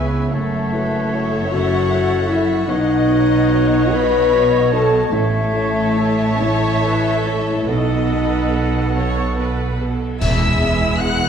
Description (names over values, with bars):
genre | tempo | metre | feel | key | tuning
cinematic, emotional film score for orchestra | 46-52 BPM (dotted quarters) | 6/8 | rubato | unclear | A4 = 439 Hz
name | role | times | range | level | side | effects
rich studio violin section | melody | 0.0-11.3 s | A4 to F#6 | -27 LUFS | left 3 dB | none
mellow clarinet | second line | 0.0-9.6 s | G#4 to E5 | -30 LUFS | equal | none
silver concert flute | second line | 0.0-11.3 s | D#5 to F#5 | -28 LUFS | left 2 dB | none
warm oboe | second line | 0.0-9.8 s | A4 to E5 | -28 LUFS | equal | none
warm studio violin section | second line | 0.0-11.3 s | B4 to A5 | -28 LUFS | left 2 dB | none
warm grand piano | accompaniment | 0.0-11.3 s | F#1 to C#5 | -25 LUFS | equal | none
warm studio viola section | accompaniment | 0.0-11.3 s | G#3 to C#5 | -26 LUFS | right 2 dB | none
mellow French horn section | sustained chords | 0.0-11.3 s | G#3 to B4 | -19 LUFS | left 3 dB | none
rich studio cello section | bass | 0.0-11.3 s | E2 to C#3 | -25 LUFS | right 3 dB | none
warm studio double bass section | bass | 0.0-11.3 s | E1 to C#2 | -24 LUFS | right 3 dB | none
cymbal swell, clash cymbals and concert bass drum | percussion | 7.7-11.3 s | none | -23 LUFS | right 1 dB | none
timpani | percussion | 10.2-11.3 s | E2 | -25 LUFS | left 2 dB | none
room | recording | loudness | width
wet scoring stage reverb, RT60 1.7 s | dark, warm production | -15 LUFS | side -7 dB against mid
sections
0.0-10.2 A section; 10.2-11.3 B section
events
band accent 10.2-11.0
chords
0.3 F#m7; 2.7 Badd9; 5.1 A; 7.7 B7; 10.2 E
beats
| 0.34 1.53 | 2.69 3.92 | 5.12 6.41 | 7.68 8.96 | 10.22